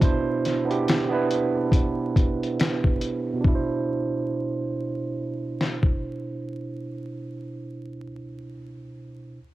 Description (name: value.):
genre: lo-fi hip hop.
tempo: 70 BPM.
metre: 4/4.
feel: swing 56% on 16ths.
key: C major.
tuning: A4 = 442 Hz.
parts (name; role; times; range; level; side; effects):
barky tine electric piano; accompaniment; 0.0-9.4 s; B2 to C5; -26 LUFS; right 3 dB; medium stereo tremolo, low-pass filter, cassette tape.
lo-fi sampler-style drum kit; drums; 0.0-6.0 s; hi-hat, kick drum, snare drum; -22 LUFS; left 1 dB; cassette tape.
room: light reverb.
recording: home recording on cassette, vinyl crackle.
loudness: -23 LUFS.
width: side -16 dB against mid.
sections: 0.0-3.4 A section; 3.4-6.9 B section.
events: filter sweep on tine electric piano 0.0-3.4.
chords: 0.0 Cmaj9.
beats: | 0.02 0.87 1.73 2.59 | 3.44 4.30 5.16 6.02.